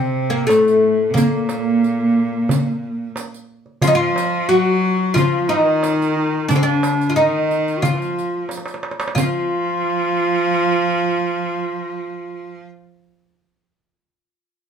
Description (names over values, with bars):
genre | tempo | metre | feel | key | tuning
Turkish makam ensemble | 90 BPM | 4/4 | straight | F makam hicaz | A4 = 440 Hz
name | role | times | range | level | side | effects
oud | melody | 0.0-12.7 s | A3 to Gb4 | -19 LUFS | left 1 dB | none
bright cello | second line | 0.0-12.6 s | A2 to Gb3 | -22 LUFS | right 4 dB | none
dark clarinet | second line | 0.0-12.6 s | A3 to Gb4 | -22 LUFS | left 3 dB | none
darbuka | percussion | 0.0-9.5 s | none | -22 LUFS | equal | none
riq | percussion | 0.5-9.5 s | none | -29 LUFS | right 5 dB | none
room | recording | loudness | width
wet studio reverb, RT60 0.7 s | band playing live in one room | -16 LUFS | side -7 dB against mid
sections
0.0-9.2 A section; 9.2-11.8 B section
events
drum fill 8.5-9.2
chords
none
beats
0.49 | 1.16 1.83 2.50 3.16 | 3.83 4.50 5.17 5.83 | 6.50 7.17 7.84 8.50 | 9.17 9.84 10.51 11.17